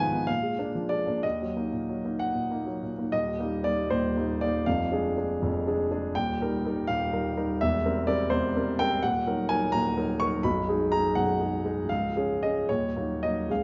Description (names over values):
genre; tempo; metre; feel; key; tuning
classical, romantic character piece for solo piano; 61-87 BPM (dotted quarters); 6/8; rubato; Eb minor, Eb major from 3.1 s; A4 = 440 Hz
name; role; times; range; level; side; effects
warm grand piano; solo; 0.0-13.6 s; B0 to C#6; -28 LUFS; equal; none
room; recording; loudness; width
moderate large studio reverb, RT60 1.2 s; nothing above 7.6 kHz; -28 LUFS; mono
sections
0.0-3.1 A section; 3.1-13.6 B section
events
none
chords
0.3 Bb7; 1.2 Ebm; 3.1 Eb; 4.7 Ddim/F; 6.1 Eb; 7.6 C7/E; 9.0 D#m; 10.4 G#m7/B; 11.9 C#; 12.7 D#m7